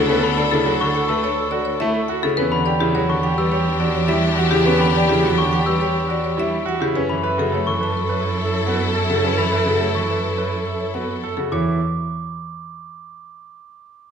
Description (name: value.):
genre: classical, minimalist pattern music.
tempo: 105 BPM.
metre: 4/4.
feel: straight.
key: unclear.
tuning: A4 = 441 Hz.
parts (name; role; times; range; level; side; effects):
marimba with medium hard mallets; melody; 0.0-11.8 s; G4 to A5; -25 LUFS; left 9 dB; none.
bright alto flute; second line; 0.0-11.3 s; G4 to A4; -27 LUFS; right 3 dB; none.
bright concert grand piano; accompaniment; 0.0-11.8 s; C#3 to C#4; -25 LUFS; right 1 dB; none.
bright symphonic string section; sustained chords; 0.0-11.3 s; D4 to A4; -26 LUFS; left 4 dB; none.
bright concert grand piano; arpeggios; 0.0-11.8 s; C#4 to B4; -26 LUFS; right 8 dB; none.
rich cello; bass; 0.0-11.8 s; D2 to F#2; -23 LUFS; right 2 dB; none.
glockenspiel with rubber mallets; arpeggios; 0.2-11.8 s; B5 to E6; -27 LUFS; left 2 dB; none.
room: wet recital hall reverb, RT60 1.4 s.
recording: none.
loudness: -17 LUFS.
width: side -7 dB against mid.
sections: 0.0-11.5 A section; 11.5-13.8 B section.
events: none.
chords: 0.0 Bm9/D; 2.4 Em9; 7.0 F#m7; 11.5 N.C..